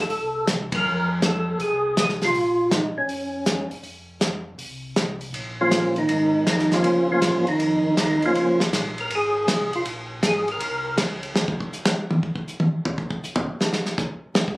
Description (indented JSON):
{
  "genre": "soul jazz organ trio",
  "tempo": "160 BPM",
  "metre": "4/4",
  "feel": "swing 66% on 8ths",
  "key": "Bb minor",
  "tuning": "A4 = 440 Hz",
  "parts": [
    { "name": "percussive tonewheel organ", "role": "melody", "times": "0.0-11.0 s", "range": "Eb3 to Bb4", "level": "-21 LUFS", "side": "equal", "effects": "slow rotary speaker, chorus vibrato" },
    { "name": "mellow tonewheel organ", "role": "bass", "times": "0.0-11.6 s", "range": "F1 to Bb2", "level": "-32 LUFS", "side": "equal", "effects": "slow rotary speaker" },
    { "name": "warm soul drum kit", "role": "drums", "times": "0.1-14.6 s", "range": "hi-hat, kick drum, ride cymbal, snare drum, toms", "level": "-24 LUFS", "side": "equal", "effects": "none" }
  ],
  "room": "moderate studio reverb, RT60 0.7 s",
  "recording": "recorded on a phone in the room, club reverb",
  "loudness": "-20 LUFS",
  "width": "side -21 dB against mid",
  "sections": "0.0-5.3 A section; 5.3-14.6 B section",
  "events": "band accent 0.7; tonewheel organ solo 5.3-14.6; drum solo 11.4-14.6",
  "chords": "0.0 F; 2.3 Bbm; 3.8 F5; 5.3 Bbm7; 11.4 N.C."
}